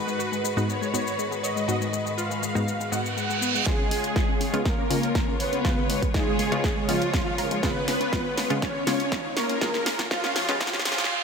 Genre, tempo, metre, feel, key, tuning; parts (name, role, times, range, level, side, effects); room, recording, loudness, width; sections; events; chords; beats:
progressive house; 121 BPM; 4/4; straight; Db mixolydian; A4 = 442 Hz
soft supersaw; melody; 0.0-11.1 s; F3 to Gb5; -29 LUFS; equal; ensemble chorus, sidechain pumping, dub echo
clear symphonic string section; sustained chords; 0.0-11.1 s; Db2 to Db5; -33 LUFS; left 2 dB; sidechain pumping, low-pass filter
wide unison pluck; stabs; 0.0-10.6 s; Ab2 to Gb4; -30 LUFS; equal; sidechain pumping, ping-pong delay
analog pluck; arpeggios; 0.1-10.9 s; Ab3 to Db5; -32 LUFS; left 2 dB; chorus, sidechain pumping, ping-pong delay
big-room dance drum kit; drums; 0.1-11.1 s; hi-hat, shaker, snare drum; -31 LUFS; equal; small room reverb
reverse cymbal and riser; sound effects; 2.9-11.2 s; -33 LUFS; right 4 dB
dark studio violin section; second line; 3.7-11.1 s; F4 to Db5; -33 LUFS; right 1 dB; sidechain pumping, ping-pong delay
electronic kick drum; drums; 3.7-10.7 s; -27 LUFS; equal; small room reverb
moderate lush hall reverb, RT60 2.1 s; high-pass filter; -23 LUFS; side -6 dB against mid
0.0-3.7 A section; 3.7-11.2 B section
reverse cymbal 2.9-3.7, 10.6-11.2; build-up 3.7-11.2; drum fill 3.7-11.1; filter sweep on synth pluck 3.7-11.2; filter sweep 3.7-11.2
0.0 Abm7; 3.7 Db7
0.19 0.69 1.19 | 1.68 2.18 2.67 3.17 | 3.66 4.16 4.66 5.15 | 5.65 6.14 6.64 7.14 | 7.63 8.13 8.62 9.12 | 9.62 10.11 10.61 11.10